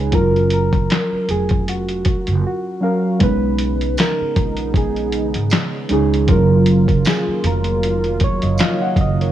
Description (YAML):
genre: lo-fi hip hop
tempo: 78 BPM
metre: 4/4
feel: swing 58% on 16ths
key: F# major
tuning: A4 = 439 Hz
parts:
  - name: soft struck synth lead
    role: melody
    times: 0.0-9.3 s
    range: F#4 to D#5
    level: -23 LUFS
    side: right 1 dB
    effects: chorus, analog delay
  - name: muted felt-like synth keys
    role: accompaniment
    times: 0.0-9.3 s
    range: F#3 to F#5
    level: -20 LUFS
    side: equal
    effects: chorus
  - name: upright bass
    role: bass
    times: 0.0-9.3 s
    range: E#1 to C#2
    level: -20 LUFS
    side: right 2 dB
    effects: none
  - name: lo-fi sampler-style drum kit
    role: drums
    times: 0.1-9.3 s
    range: handclaps, hi-hat, kick drum, snare drum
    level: -19 LUFS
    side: equal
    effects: none
  - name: warm analog pad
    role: sustained chords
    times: 3.2-9.3 s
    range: C#3 to E#4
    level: -24 LUFS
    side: right 1 dB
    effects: chorus
  - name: tambourine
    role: percussion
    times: 4.0-8.8 s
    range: none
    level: -37 LUFS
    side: right 10 dB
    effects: none
room: little or no reverb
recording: cassette tape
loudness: -15 LUFS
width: side -12 dB against mid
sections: 0.0-3.2 A section; 3.2-9.3 A section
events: silent gap 2.4-3.2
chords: 0.1 F#maj7; 3.2 B69; 6.3 F#maj7